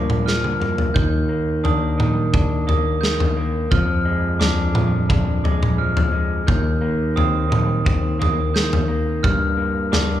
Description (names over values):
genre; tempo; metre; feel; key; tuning
post-rock; 87 BPM; 4/4; straight; F dorian; A4 = 440 Hz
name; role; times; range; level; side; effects
electric guitar through a small old amp; arpeggios; 0.0-10.2 s; G2 to D4; -25 LUFS; equal; none
glockenspiel with hard plastic mallets; arpeggios; 0.0-10.2 s; D6 to G6; -26 LUFS; right 2 dB; none
growling fingered electric bass; bass; 0.0-10.2 s; Eb2 to G2; -24 LUFS; equal; overdrive
big rock drum kit; drums; 0.1-10.1 s; kick drum, snare drum, toms; -19 LUFS; left 1 dB; none
room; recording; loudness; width
moderate recital hall reverb, RT60 1.7 s; recorded in a church or concert hall; -17 LUFS; side -12 dB against mid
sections
0.0-10.2 A section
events
drum fill 0.3-1.0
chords
0.0 Gm7; 1.0 Ebmaj7; 3.7 Fm6; 6.5 Cm7/Eb; 9.2 Gm7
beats
0.27 | 0.96 1.65 2.34 3.03 | 3.72 4.41 5.10 5.79 | 6.48 7.17 7.86 8.55 | 9.24 9.93